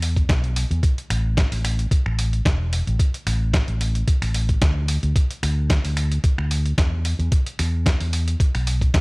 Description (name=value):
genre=nu-disco, nu disco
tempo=111 BPM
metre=4/4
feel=swing 54% on 16ths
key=unclear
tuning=A4 = 440 Hz
part: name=fingered electric bass with an envelope filter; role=bass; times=0.0-9.0 s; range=E1 to E2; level=-21 LUFS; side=equal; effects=sidechain pumping
part: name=dusty soul sampler-style drum kit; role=drums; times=0.0-9.0 s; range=finger snaps, hi-hat, snare drum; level=-27 LUFS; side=equal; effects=none
part: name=electronic kick drum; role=drums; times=0.2-9.0 s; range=none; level=-18 LUFS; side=equal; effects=none
room=little or no reverb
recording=dry, gritty hardware recording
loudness=-19 LUFS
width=side -29 dB against mid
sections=0.0-9.0 A section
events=none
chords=none